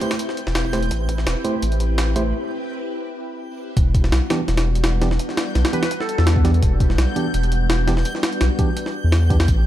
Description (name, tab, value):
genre	drum and bass, jungle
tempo	168 BPM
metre	4/4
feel	straight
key	E minor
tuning	A4 = 441 Hz
part	soft string machine	sustained chords	0.0-9.7 s	G3 to B4	-27 LUFS	left 1 dB	ensemble chorus
part	tine electric piano	stabs	0.0-9.4 s	E3 to C5	-27 LUFS	right 3 dB	dub echo
part	jungle sampler-style drum kit	drums	0.0-9.6 s	hi-hat, kick drum, snare drum	-22 LUFS	equal	high-pass filter on kick, high-pass filter on hats, high-pass filter on snare
part	backwards swelling texture	texture	0.0-9.7 s	G6	-34 LUFS	equal	built-in reverb
part	saturated sub bass	bass	0.5-9.7 s	E1 to E2	-18 LUFS	equal	none
part	airy dreamy lead	melody	5.7-6.4 s	A4 to B4	-29 LUFS	equal	chorus, dub echo
room	light reverb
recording	dark, warm production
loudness	-17 LUFS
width	side -13 dB against mid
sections	0.0-3.8 A section; 3.8-9.7 B section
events	build-up 0.0-3.8; filter sweep on tine electric piano 0.0-3.8; break 2.3-3.8; drop 3.8-9.7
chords	0.0 Am7; 3.8 Em7